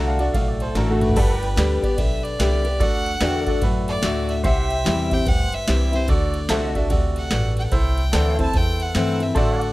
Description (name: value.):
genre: honky-tonk and classic country.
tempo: 146 BPM.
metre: 4/4.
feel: swing 63% on 8ths.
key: G major.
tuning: A4 = 440 Hz.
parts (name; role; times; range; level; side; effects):
warm upright piano; second line; 0.0-1.2 s; A3 to F5; -27 LUFS; right 3 dB; none.
picked steel-string acoustic guitar; accompaniment; 0.0-9.7 s; E2 to G4; -25 LUFS; left 3 dB; none.
warm baby grand piano; accompaniment; 0.0-9.7 s; E4 to G5; -30 LUFS; right 3 dB; none.
pedal steel guitar; sustained chords; 0.0-9.7 s; A4 to G5; -29 LUFS; equal; lush chorus.
upright bass; bass; 0.0-9.7 s; G1 to A2; -23 LUFS; equal; none.
booming analog drum machine; drums; 0.2-9.7 s; crash cymbal, kick drum, ride cymbal, snare drum, toms; -24 LUFS; equal; none.
clear fiddle; melody; 0.6-9.7 s; A4 to A5; -28 LUFS; right 1 dB; none.
room: light reverb, small room ambience.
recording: rough home demo mix.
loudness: -18 LUFS.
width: side -18 dB against mid.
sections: 0.0-1.2 A section; 1.2-9.7 B section.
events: upright piano solo 0.0-1.2; drum fill 0.8-1.2.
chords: 0.0 D; 1.2 G; 2.8 D; 4.4 C; 6.1 D; 7.7 Am.